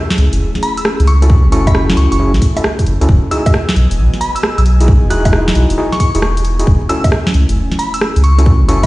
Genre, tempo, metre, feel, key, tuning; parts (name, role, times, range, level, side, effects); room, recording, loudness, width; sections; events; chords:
UK garage, two-step garage; 134 BPM; 4/4; swing 66% on 16ths; A4 = 440 Hz
airy breathy pad; sustained chords; 0.0-8.9 s; A3 to G#5; -24 LUFS; equal; chorus, sidechain pumping
punchy analog drum machine; drums; 0.1-8.9 s; bongos, hi-hat, rim click, snare drum; -18 LUFS; equal
saturated sub bass; bass; 0.2-8.9 s; E1 to C#2; -11 LUFS; equal
glassy synth bell; melody; 0.6-8.9 s; B5 to F#6; -22 LUFS; equal; chorus, tremolo, tape echo
overdriven tine electric piano; stabs; 1.2-8.9 s; C#4 to A4; -19 LUFS; equal; fast tremolo, vintage 12-bit sampler grit, tape echo
electronic kick drum; drums; 1.3-8.9 s; -11 LUFS; equal
light reverb; played on a big sound system in a bare room, large studio reverb, vinyl crackle, nothing above 10.3 kHz; -10 LUFS; side -19 dB against mid
0.0-8.9 A section
0.0 F#m7; 3.1 Emaj9; 6.7 F#m7